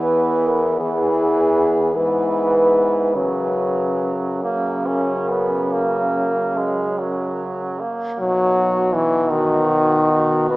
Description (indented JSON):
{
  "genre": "classical, lyrical piece for horn quartet",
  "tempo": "46-59 BPM (dotted quarters)",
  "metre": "12/8",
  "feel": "rubato",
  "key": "B major",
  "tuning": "A4 = 437 Hz",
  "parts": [
    { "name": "mellow French horn", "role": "melody", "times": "0.0-10.6 s", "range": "D#4 to B4", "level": "-22 LUFS", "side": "left 1 dB", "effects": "none" },
    { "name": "clear French horn", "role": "second line", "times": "0.0-10.6 s", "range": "F#3 to F#4", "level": "-24 LUFS", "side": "right 2 dB", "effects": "none" },
    { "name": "warm French horn", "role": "accompaniment", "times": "0.0-10.6 s", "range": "C#3 to B3", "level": "-20 LUFS", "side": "equal", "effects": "none" },
    { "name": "mellow French horn", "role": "bass", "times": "0.0-10.6 s", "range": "E2 to B2", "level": "-26 LUFS", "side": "right 1 dB", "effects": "none" }
  ],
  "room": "wet church reverb, RT60 3.6 s",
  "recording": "small speaker sound",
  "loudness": "-17 LUFS",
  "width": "side -19 dB against mid",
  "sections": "0.0-8.2 A section; 8.2-10.6 B section",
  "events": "none",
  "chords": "0.0 E; 3.2 F#; 8.2 B"
}